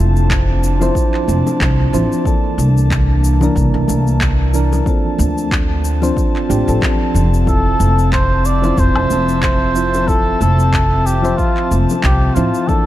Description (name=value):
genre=sunset chillout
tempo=92 BPM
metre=4/4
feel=swing 56% on 16ths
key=F major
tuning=A4 = 439 Hz
part: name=soft electric-piano-like synth keys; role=accompaniment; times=0.0-12.9 s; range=E3 to E5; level=-20 LUFS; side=equal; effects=chorus, auto-pan, vintage 12-bit sampler grit, tape echo
part: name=airy breathy pad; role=sustained chords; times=0.0-12.9 s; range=E3 to A5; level=-22 LUFS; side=equal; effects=chorus, vintage 12-bit sampler grit
part: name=upright bass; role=bass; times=0.0-12.5 s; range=F1 to D2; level=-15 LUFS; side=equal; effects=none
part: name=electronic cabasa, handclaps and woodblock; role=drums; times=0.2-12.8 s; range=none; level=-25 LUFS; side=left 1 dB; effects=none
part: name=electronic kick drum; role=drums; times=0.3-12.8 s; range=none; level=-18 LUFS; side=equal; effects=none
part: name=bongos and congas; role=percussion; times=0.8-12.5 s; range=none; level=-26 LUFS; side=left 1 dB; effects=none
part: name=trumpet with cup mute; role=melody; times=7.5-12.9 s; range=F4 to D5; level=-18 LUFS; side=equal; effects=tape echo
room=light reverb, small room ambience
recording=dark, warm production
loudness=-12 LUFS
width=side -14 dB against mid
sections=0.0-12.9 A section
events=none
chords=0.0 Fmaj7; 2.3 C13; 4.9 Dm7; 7.5 Fmaj7